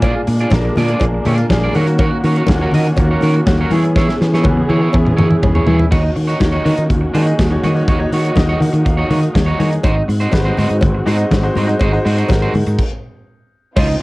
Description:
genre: disco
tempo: 122 BPM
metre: 4/4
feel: straight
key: unclear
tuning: A4 = 440 Hz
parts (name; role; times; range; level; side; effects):
- bright grand piano; accompaniment; 0.0-12.8 s; Bb2 to Gb5; -22 LUFS; left 1 dB; none
- electric guitar at the edge of break-up; accompaniment; 0.0-13.9 s; Eb4 to Eb5; -21 LUFS; right 2 dB; none
- dark studio string section; sustained chords; 0.0-14.0 s; Db3 to G#4; -23 LUFS; equal; none
- fingered electric bass; bass; 0.0-13.9 s; Ab1 to E3; -16 LUFS; equal; none
- modern studio drum kit; drums; 0.0-13.9 s; crash cymbal, hi-hat, kick drum, snare drum, toms; -18 LUFS; equal; cassette tape
- congas; percussion; 0.0-13.9 s; none; -23 LUFS; left 3 dB; none
- cowbell; percussion; 0.0-5.5, 9.8-13.9 s; none; -25 LUFS; left 1 dB; none
room: light reverb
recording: home recording on cassette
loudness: -12 LUFS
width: side -21 dB against mid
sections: 0.0-5.9 A section; 5.9-13.8 B section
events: drum fill 4.0-5.9; grand piano fill 8.4-9.8; stop 12.8-13.8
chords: 0.0 Bb7; 1.7 Ebm7; 3.7 E6; 5.9 Ebm7; 9.8 Ab7

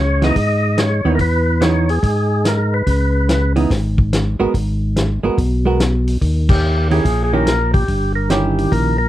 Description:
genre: soul jazz organ trio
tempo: 144 BPM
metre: 4/4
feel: swing 66% on 8ths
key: unclear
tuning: A4 = 440 Hz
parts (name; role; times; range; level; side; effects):
- percussive tonewheel organ; melody; 0.0-3.5, 6.5-9.1 s; G4 to D#5; -20 LUFS; equal; slow rotary speaker
- tonewheel organ; bass; 0.0-9.1 s; G1 to G#2; -17 LUFS; equal; overdrive, chorus vibrato, stopped rotary speaker
- archtop guitar, miked and amplified; accompaniment; 0.2-8.9 s; D#3 to A#4; -19 LUFS; right 4 dB; none
- warm soul drum kit; drums; 0.2-8.8 s; crash cymbal, hi-hat, kick drum, snare drum; -19 LUFS; equal; none
room: light reverb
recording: dark, warm production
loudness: -14 LUFS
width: side -14 dB against mid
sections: 0.0-9.1 A section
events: band accent 6.4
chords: 0.0 C#m9; 4.5 G#m9; 6.2 D#7b9

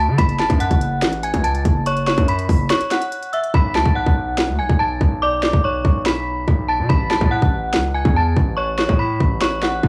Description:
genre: hip hop, trap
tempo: 143 BPM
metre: 4/4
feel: half-time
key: B dorian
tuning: A4 = 440 Hz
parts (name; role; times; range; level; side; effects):
- metallic FM bell; melody; 0.0-9.9 s; C#5 to B6; -23 LUFS; equal; chorus, low-pass filter
- distorted 808-style bass; bass; 0.0-9.9 s; F#1 to D3; -24 LUFS; equal; distortion
- trap drum kit; drums; 0.2-9.9 s; hi-hat, kick drum, snare drum; -20 LUFS; equal; none
room: little or no reverb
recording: dry, gritty hardware recording, small room ambience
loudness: -18 LUFS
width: mono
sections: 0.0-9.9 A section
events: break 2.7-3.5; hi-hats muted 3.5-9.9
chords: 0.2 F#m; 3.5 Bm7; 6.9 A

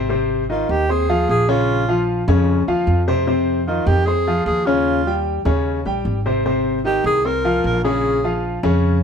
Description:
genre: Afro-Cuban jazz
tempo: 151 BPM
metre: 4/4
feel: straight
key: Ab major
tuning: A4 = 440 Hz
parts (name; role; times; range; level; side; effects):
- clear grand piano; accompaniment; 0.0-9.0 s; C3 to C6; -19 LUFS; left 2 dB; none
- upright bass; bass; 0.0-9.0 s; Ab1 to F2; -21 LUFS; right 1 dB; none
- breathy alto saxophone; melody; 0.5-8.4 s; F4 to Bb4; -20 LUFS; right 1 dB; none
room: moderate studio reverb, RT60 0.8 s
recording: band playing live in one room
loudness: -16 LUFS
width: side -7 dB against mid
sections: 0.1-9.0 A section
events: alto saxophone solo 0.1-9.0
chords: 0.1 Ab69; 1.7 Bbm; 3.3 Fm7; 4.9 Eb7; 6.5 Ab69; 8.0 Bbm7

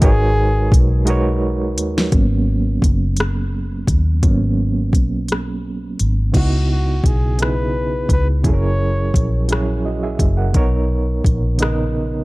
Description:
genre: slow six-eight R&B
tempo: 57 BPM (dotted quarters)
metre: 6/8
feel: straight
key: G# minor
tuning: A4 = 440 Hz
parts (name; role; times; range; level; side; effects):
- warm flugelhorn; melody; 0.0-0.8, 6.4-9.5 s; F#4 to C#5; -24 LUFS; left 1 dB; none
- overdriven reed electric piano; accompaniment; 0.0-12.2 s; B2 to F#5; -22 LUFS; right 2 dB; medium tremolo
- vintage muted fingered electric bass; bass; 0.0-12.2 s; F#1 to D#2; -18 LUFS; equal; none
- smooth R&B drum kit; drums; 0.0-11.8 s; crash cymbal, hi-hat, kick drum, rim click, snare drum; -17 LUFS; equal; none
room: digital ambience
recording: dark, warm production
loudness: -15 LUFS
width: side -21 dB against mid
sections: 0.0-2.1 A section; 2.1-6.3 B section; 6.3-12.2 C section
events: drum fill 1.1-2.1; reed electric piano solo 2.1-6.3; break 5.3-6.3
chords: 0.0 G#m11; 6.3 C#m11; 8.4 F#9; 10.5 Bmaj9

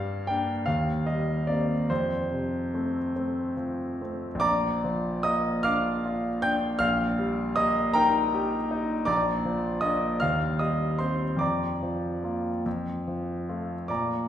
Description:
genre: classical, romantic nocturne for solo piano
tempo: 46-55 BPM (dotted quarters)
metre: 6/8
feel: rubato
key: Bb major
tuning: A4 = 439 Hz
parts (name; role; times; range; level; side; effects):
- clear concert grand piano; solo; 0.0-14.3 s; Bb1 to G6; -25 LUFS; equal; none
room: wet recital hall reverb, RT60 1.6 s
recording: heard from further back in the room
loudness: -25 LUFS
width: side -10 dB against mid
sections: 0.0-4.4 A section; 4.4-14.3 B section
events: none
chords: 0.0 Gm7; 0.7 Cm7/Eb; 1.9 F; 4.4 Bb; 6.8 Eb/Bb; 9.1 Bb; 10.2 Cm/Eb; 11.4 Bb/F; 12.7 F

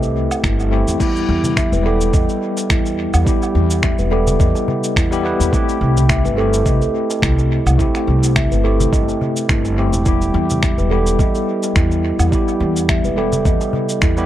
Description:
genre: organic downtempo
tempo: 106 BPM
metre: 4/4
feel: swing 55% on 16ths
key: E harmonic minor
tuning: A4 = 439 Hz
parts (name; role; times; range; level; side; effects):
- bell-like tine electric piano; accompaniment; 0.0-14.3 s; G3 to B4; -21 LUFS; left 4 dB; medium stereo tremolo, sidechain pumping, dub echo
- steel tongue drum; arpeggios; 0.0-14.2 s; E4 to E5; -21 LUFS; right 5 dB; dub echo
- upright bass; bass; 0.0-14.3 s; E1 to E2; -18 LUFS; equal; none
- dusty soul sampler-style drum kit; drums; 0.0-14.3 s; crash cymbal, finger snaps, shaker, woodblock; -25 LUFS; equal; overdrive, dub echo
- electronic kick drum; drums; 0.4-14.1 s; none; -18 LUFS; equal; overdrive
- darbuka; percussion; 1.0-14.3 s; none; -26 LUFS; left 1 dB; none
room: light reverb, small room ambience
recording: echo-heavy mix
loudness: -14 LUFS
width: side -12 dB against mid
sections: 0.0-14.3 A section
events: none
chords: 0.0 C6; 1.0 Em; 5.5 C6; 10.1 Em

